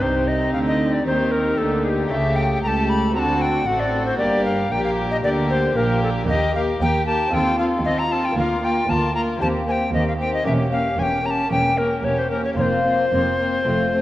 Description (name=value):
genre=classical, baroque-style concerto movement with solo episodes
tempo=115 BPM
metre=4/4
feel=straight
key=G minor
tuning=A4 = 441 Hz
part: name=bright alto recorder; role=melody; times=0.0-14.0 s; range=G4 to B5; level=-22 LUFS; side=left 1 dB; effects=none
part: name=rich chamber violin section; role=melody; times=0.0-14.0 s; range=F4 to Bb4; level=-32 LUFS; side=left 3 dB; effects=none
part: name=warm chamber violin section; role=second line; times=0.0-14.0 s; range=C4 to G4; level=-26 LUFS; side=left 2 dB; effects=none
part: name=dark chamber viola section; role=accompaniment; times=0.0-14.0 s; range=A3 to C4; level=-26 LUFS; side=equal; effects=none
part: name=lute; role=accompaniment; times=0.0-14.0 s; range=D2 to Bb4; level=-30 LUFS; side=left 1 dB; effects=none
part: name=dark studio double bass section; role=bass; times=0.0-14.0 s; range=E1 to Eb2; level=-26 LUFS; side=right 2 dB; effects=none
part: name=warm chamber cello section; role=bass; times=0.0-14.0 s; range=C#2 to Eb3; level=-27 LUFS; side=right 2 dB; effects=none
room=moderate scoring stage reverb, RT60 2.0 s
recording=worn, warbling old tape, cassette tape, warbly pitch drift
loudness=-18 LUFS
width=side -15 dB against mid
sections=0.0-14.0 A section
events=none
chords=0.0 Cm; 2.1 A7/C#; 3.2 D7; 4.2 Gm; 6.3 Eb; 7.3 F7/Eb; 8.4 Bb/D; 9.4 Cm7/Eb; 10.4 Edim7; 12.6 Fsus4